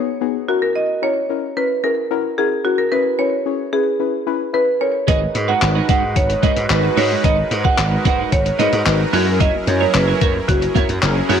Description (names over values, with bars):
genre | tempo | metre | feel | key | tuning
dance-pop | 111 BPM | 4/4 | straight | G# minor | A4 = 441 Hz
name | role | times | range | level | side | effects
marimba with medium hard mallets | melody | 0.0-11.4 s | F#4 to F#5 | -19 LUFS | right 2 dB | slapback echo
deep mellow chord stab | accompaniment | 0.0-11.4 s | B3 to C#5 | -23 LUFS | left 12 dB | chorus, sidechain pumping
supersaw pad | sustained chords | 5.1-11.4 s | F#3 to B4 | -24 LUFS | right 2 dB | sidechain pumping
twelve-string electric guitar | riff | 5.1-11.4 s | G#3 to C#5 | -23 LUFS | right 15 dB | analog chorus
slap bass | bass | 5.1-11.4 s | F#1 to G#2 | -20 LUFS | right 1 dB | sidechain pumping
lo-fi sampler-style drum kit | drums | 5.1-11.4 s | handclaps, hi-hat, kick drum | -20 LUFS | left 2 dB | none
room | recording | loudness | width
light reverb, digital ambience | 1960s-style stereo with parts hard left and right | -15 LUFS | side -8 dB against mid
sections
0.0-11.4 A section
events
none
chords
0.5 F#7; 2.9 E6; 5.1 G#m7; 9.1 F#7